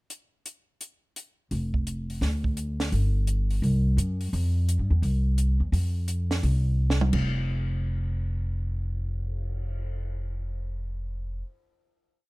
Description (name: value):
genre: jazz, small-group swing and bop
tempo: 171 BPM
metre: 4/4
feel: swing 64% on 8ths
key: unclear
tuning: A4 = 440 Hz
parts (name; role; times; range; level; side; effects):
- compact cocktail drum kit; drums; 0.1-9.9 s; crash cymbal, cymbal swell, hi-hat, kick drum, snare drum, toms; -32 LUFS; right 2 dB; none
- upright bass; bass; 1.5-11.4 s; F1 to G2; -25 LUFS; equal; none
room: little or no reverb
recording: none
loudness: -25 LUFS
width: side -22 dB against mid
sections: 0.1-1.5 pickup bar; 1.5-7.1 A section; 7.1-9.9 final note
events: drum fill 6.8-7.1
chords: none